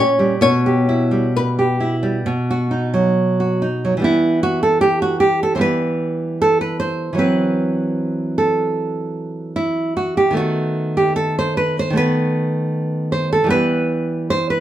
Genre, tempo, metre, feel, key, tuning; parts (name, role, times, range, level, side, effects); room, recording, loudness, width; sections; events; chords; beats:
romantic duo for nylon-string guitar and classical guitar; 64-79 BPM; 4/4; rubato; E minor; A4 = 440 Hz
nylon-string guitar; melody; 0.0-3.1 s; B4 to C#5; -20 LUFS; left 4 dB
nylon-string guitar; accompaniment; 0.0-14.6 s; A#2 to C5; -16 LUFS; right 1 dB
wet studio reverb, RT60 0.6 s; band playing live in one room; -16 LUFS; side -12 dB against mid
0.0-4.0 A section; 4.0-14.6 B section
0.4 Em/B; 2.3 B; 4.0 Em; 7.2 F#m7b5/E; 13.5 Em
| 0.42 1.35 2.27 3.16 | 4.04 4.82 5.62 6.41 | 7.19 7.98 8.79 9.57 | 10.37 11.17 11.99 12.76 | 13.52 14.31